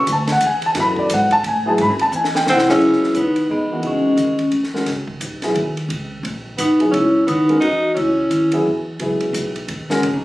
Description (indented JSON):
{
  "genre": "modal jazz",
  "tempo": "175 BPM",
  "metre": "3/4",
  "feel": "swing 62% on 8ths",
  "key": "C# dorian",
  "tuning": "A4 = 440 Hz",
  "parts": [
    { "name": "dark concert grand piano", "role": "accompaniment", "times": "0.0-10.0 s", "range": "C#3 to B5", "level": "-18 LUFS", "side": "left 1 dB", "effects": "none" },
    { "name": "upright bass", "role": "bass", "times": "0.1-10.2 s", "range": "A#1 to A2", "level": "-26 LUFS", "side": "equal", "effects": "none" },
    { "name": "compact cocktail drum kit", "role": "drums", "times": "0.1-10.1 s", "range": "crash cymbal, hi-hat, kick drum, ride cymbal, snare drum", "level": "-28 LUFS", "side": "equal", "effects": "none" },
    { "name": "vibraphone with medium hard mallets", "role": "melody", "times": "2.5-4.5, 6.6-8.6 s", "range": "B3 to F#4", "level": "-16 LUFS", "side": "equal", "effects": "none" },
    { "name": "growling tenor saxophone", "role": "second line", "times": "2.5-4.5, 6.6-8.6 s", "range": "G#3 to D#4", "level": "-21 LUFS", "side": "right 1 dB", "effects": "none" }
  ],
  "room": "moderate large studio reverb, RT60 0.9 s",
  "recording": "recorded on a phone in the room, club reverb",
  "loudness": "-15 LUFS",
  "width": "side -17 dB against mid",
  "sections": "0.0-2.8 A section; 2.8-10.2 B section",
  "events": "drum fill 2.1-2.8",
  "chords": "0.0 Bm11 (rootless); 0.8 F#m11; 1.8 G#7alt; 2.8 C#m11; 4.9 F#sus4 (rootless); 6.9 C#madd9; 9.0 F#sus4"
}